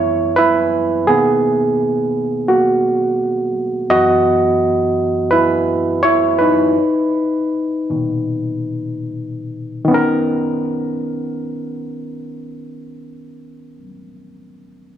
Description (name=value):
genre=soul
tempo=72-85 BPM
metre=4/4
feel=swing 54% on 16ths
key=B major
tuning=A4 = 442 Hz
part: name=barky reed electric piano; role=solo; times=0.0-15.0 s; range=F#2 to E5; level=-15 LUFS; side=right 1 dB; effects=overdrive, spring reverb
room=moderate plate reverb, RT60 2.9 s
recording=small room ambience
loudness=-14 LUFS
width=side -10 dB against mid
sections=0.0-9.9 A section; 9.9-13.2 B section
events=reed electric piano solo 0.0-9.9; slowing down 3.9-9.9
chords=0.0 F#7sus4; 1.1 Bmaj7; 3.9 F#7sus4; 6.8 Bmaj7; 9.9 Bmaj9